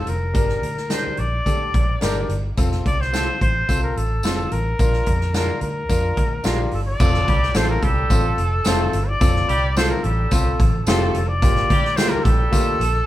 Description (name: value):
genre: uptempo 1960s-style soul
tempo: 109 BPM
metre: 4/4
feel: straight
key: F major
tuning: A4 = 439 Hz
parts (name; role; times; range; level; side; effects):
- clear trumpet; melody; 0.0-13.1 s; A4 to D5; -24 LUFS; left 1 dB; none
- clear grand piano; accompaniment; 0.0-12.8 s; Bb3 to Bb4; -27 LUFS; left 2 dB; none
- vintage muted fingered electric bass; bass; 0.1-13.0 s; F1 to F2; -23 LUFS; equal; none
- swinging big-band drum kit; drums; 0.1-12.9 s; crash cymbal, hi-hat, kick drum, snare drum; -21 LUFS; equal; none
- tambourine; percussion; 0.3-12.7 s; none; -35 LUFS; left 2 dB; none
- electric guitar at the edge of break-up; stabs; 0.9-12.1 s; Bb3 to Bb4; -31 LUFS; right 5 dB; none
- warm horn section; second line; 7.3-12.8 s; G3 to A4; -28 LUFS; right 1 dB; none
room: light reverb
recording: band playing live in one room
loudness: -17 LUFS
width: side -14 dB against mid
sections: 0.0-7.0 A section; 7.0-13.1 B section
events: none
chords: 0.4 Gm; 2.6 F; 4.8 Bb; 7.0 F; 11.4 Gm7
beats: | 0.35 0.91 1.47 2.02 | 2.58 3.13 3.69 4.24 | 4.79 5.35 5.90 6.45 | 7.00 7.56 8.11 8.66 | 9.21 9.76 10.31 10.86 | 11.41 11.97 12.52